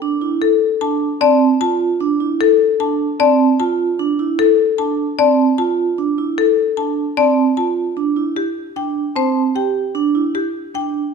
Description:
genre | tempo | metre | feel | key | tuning
classical, minimalist pattern music | 151 BPM | 5/4 | straight | unclear | A4 = 440 Hz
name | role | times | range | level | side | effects
vibraphone with medium mallets | arpeggios | 0.0-11.0 s | C4 to G4 | -17 LUFS | right 6 dB | none
marimba with hard mallets | melody | 0.4-11.0 s | G4 to A5 | -17 LUFS | left 9 dB | none
celesta | arpeggios | 1.2-9.4 s | A5 | -22 LUFS | left 6 dB | none
room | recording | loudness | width
wet recital hall reverb, RT60 1.4 s | minimal, uncompressed stereo recording | -14 LUFS | side -5 dB against mid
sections
0.0-11.1 A section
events
none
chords
0.0 Fmaj7; 8.0 Cadd9 (rootless)

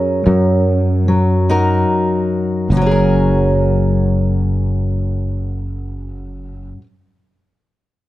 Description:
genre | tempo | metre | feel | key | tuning
folk | 71-76 BPM | 3/4 | straight | F# major | A4 = 441 Hz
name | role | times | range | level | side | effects
fingerpicked steel-string acoustic guitar | accompaniment | 0.0-6.9 s | F#2 to A#4 | -17 LUFS | left 1 dB | none
sustaining fretless electric bass | bass | 0.3-6.7 s | F#1 to F#2 | -16 LUFS | equal | none
room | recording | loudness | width
little or no reverb | none | -13 LUFS | side -16 dB against mid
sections
0.0-2.7 A section; 2.7-5.3 B section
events
slowing down 0.0-2.7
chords
0.3 D#m/F#; 2.7 F#add9

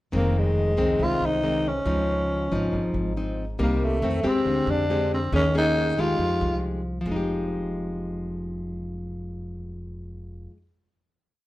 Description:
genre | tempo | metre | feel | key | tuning
bossa nova | 139 BPM | 4/4 | straight | F minor | A4 = 442 Hz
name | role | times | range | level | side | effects
nylon-string guitar | accompaniment | 0.1-10.7 s | F2 to Ab4 | -26 LUFS | left 1 dB | none
upright bass | bass | 0.1-10.5 s | F1 to F2 | -29 LUFS | equal | none
growling tenor saxophone | melody | 0.2-6.6 s | Ab3 to F4 | -25 LUFS | equal | none
room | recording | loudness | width
light reverb | minimal, uncompressed stereo recording | -22 LUFS | side -16 dB against mid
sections
0.1-7.1 A section; 7.1-10.5 final chord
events
none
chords
0.1 Fm7; 1.9 Dbmaj9; 3.6 Cm7; 4.0 F7; 4.5 Fm69/D; 5.3 Eb7sus4; 6.2 Fm9

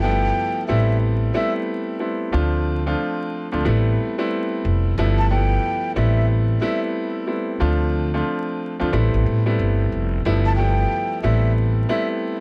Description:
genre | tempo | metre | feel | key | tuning
hip hop, boom-bap hip-hop | 91 BPM | 4/4 | swing 63% on 16ths | A minor | A4 = 441 Hz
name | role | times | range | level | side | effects
breathy mellow jazz flute | melody | 0.0-12.1 s | E5 to A5 | -28 LUFS | equal | high-pass filter, low-pass filter, plate reverb, analog delay
warm upright piano | accompaniment | 0.0-12.4 s | F3 to F4 | -25 LUFS | equal | high-pass filter, low-pass filter
upright bass | bass | 0.0-11.8 s | F1 to A2 | -22 LUFS | equal | none
room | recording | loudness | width
light reverb | vinyl crackle | -21 LUFS | mono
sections
0.0-12.4 A section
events
none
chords
0.0 G13; 0.7 Am9; 2.3 Dm7; 3.7 Am9; 5.0 G13; 6.0 Am9; 7.6 Dm7; 8.9 Am9; 10.2 G13; 11.2 Am9

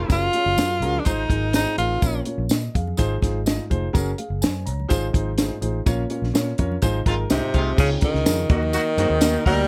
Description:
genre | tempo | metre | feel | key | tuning
uptempo 1960s-style soul | 125 BPM | 4/4 | straight | unclear | A4 = 444 Hz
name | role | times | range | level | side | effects
mellow horn section | second line | 0.0-0.2, 7.1-9.6 s | C3 to Bb4 | -30 LUFS | equal | none
vintage muted fingered electric bass | bass | 0.0-9.6 s | F1 to Bb2 | -28 LUFS | equal | tube saturation
breathy tenor saxophone | melody | 0.1-2.2, 7.3-9.7 s | C3 to F4 | -25 LUFS | equal | none
dark concert grand piano | accompaniment | 0.1-9.6 s | Ab2 to Bb5 | -30 LUFS | equal | none
compact cocktail drum kit | drums | 0.1-9.6 s | crash cymbal, hi-hat, kick drum, snare drum | -24 LUFS | equal | none
congas | percussion | 0.1-9.6 s | none | -40 LUFS | equal | none
tambourine | percussion | 0.1-9.3 s | none | -36 LUFS | equal | none
electric guitar through a small old amp | riff | 1.0-2.0, 7.1-9.7 s | Bb3 to C5 | -36 LUFS | equal | none
room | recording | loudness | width
light reverb | none | -22 LUFS | mono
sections
0.0-7.8 A section; 7.8-9.7 B section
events
band accent 5.9-7.8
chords
0.1 Gbadd9; 1.1 Ab6; 2.0 Bbm; 3.0 Ab6; 4.0 Gbadd9; 4.9 Ab6; 5.9 Bbm; 6.8 Ab6; 7.8 Dbadd9; 8.5 Ebm

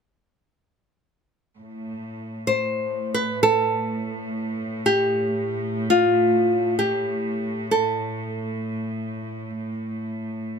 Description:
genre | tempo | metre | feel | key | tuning
Turkish makam ensemble | free time | none | none | A makam nihavent | A4 = 445 Hz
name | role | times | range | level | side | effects
clear chamber cello section | drone | 1.6-10.6 s | A2 | -29 LUFS | right 1 dB | none
nylon-string guitar | melody | 2.5-9.7 s | F4 to C5 | -21 LUFS | equal | none
room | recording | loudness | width
light reverb | close, detailed microphones | -21 LUFS | side -6 dB against mid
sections
1.6-10.6 A section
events
none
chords
none

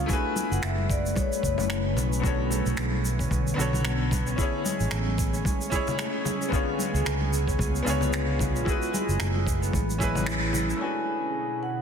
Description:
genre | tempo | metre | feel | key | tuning
sunset chillout | 112 BPM | 4/4 | swing 57% on 16ths | B dorian | A4 = 441 Hz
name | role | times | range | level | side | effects
bright grand piano | accompaniment | 0.0-11.8 s | D3 to C#5 | -32 LUFS | moving between left 5 dB and right 4 dB | auto-pan, digital delay
ethereal airy pad | sustained chords | 0.0-11.8 s | B2 to C#5 | -32 LUFS | equal | ensemble chorus, built-in reverb, phaser
fingered electric bass | bass | 0.0-10.7 s | F#1 to C#2 | -27 LUFS | equal | none
vibraphone with medium hard mallets | melody | 0.1-1.9, 10.8-11.8 s | C#5 to G#5 | -32 LUFS | left 2 dB | vintage 12-bit sampler grit, digital delay
electronic kick drum | drums | 0.1-10.1 s | none | -29 LUFS | equal | none
shaker and finger snaps | drums | 0.1-10.8 s | none | -34 LUFS | right 2 dB | low-pass filter on perc, soft clipping on snare, low-pass filter on snare, low-pass filter on room
congas | percussion | 0.4-10.7 s | none | -36 LUFS | left 3 dB | none
concert harp | arpeggios | 2.5-11.8 s | G#3 to E4 | -34 LUFS | right 1 dB | digital delay
room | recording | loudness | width
moderate lush hall reverb, RT60 1.8 s | dense, heavily limited modern master | -24 LUFS | side -7 dB against mid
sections
0.0-10.8 A section; 10.8-11.8 B section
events
band accent 10.3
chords
0.1 F#m11; 2.2 Bm9; 4.4 Amaj7; 6.5 C#7b9; 8.7 F#m11; 9.7 Amaj9; 10.8 Bm9

